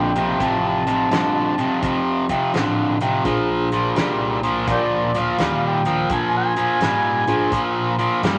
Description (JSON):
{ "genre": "electric blues shuffle", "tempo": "84 BPM", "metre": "4/4", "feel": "swing 66% on 8ths", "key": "unclear", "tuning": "A4 = 441 Hz", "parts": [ { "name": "overdriven harmonica", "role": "melody", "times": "0.0-7.7 s", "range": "G4 to A5", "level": "-25 LUFS", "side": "equal", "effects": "none" }, { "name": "crunchy overdriven guitar", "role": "riff", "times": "0.0-8.4 s", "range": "F2 to G3", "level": "-22 LUFS", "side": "equal", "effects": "none" }, { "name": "upright bass", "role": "bass", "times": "0.0-8.4 s", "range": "F1 to Bb2", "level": "-32 LUFS", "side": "equal", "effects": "none" }, { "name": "warm soul drum kit", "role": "drums", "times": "0.2-8.4 s", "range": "hi-hat, kick drum, snare drum", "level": "-28 LUFS", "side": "equal", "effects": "none" }, { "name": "overdriven reed electric piano", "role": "accompaniment", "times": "1.1-7.5 s", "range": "A3 to Eb5", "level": "-28 LUFS", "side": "equal", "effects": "none" } ], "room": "wet small room reverb, RT60 0.6 s", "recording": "vinyl crackle", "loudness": "-20 LUFS", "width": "mono", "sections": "0.0-8.4 A section", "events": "none", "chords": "0.0 F9; 3.3 Bb9" }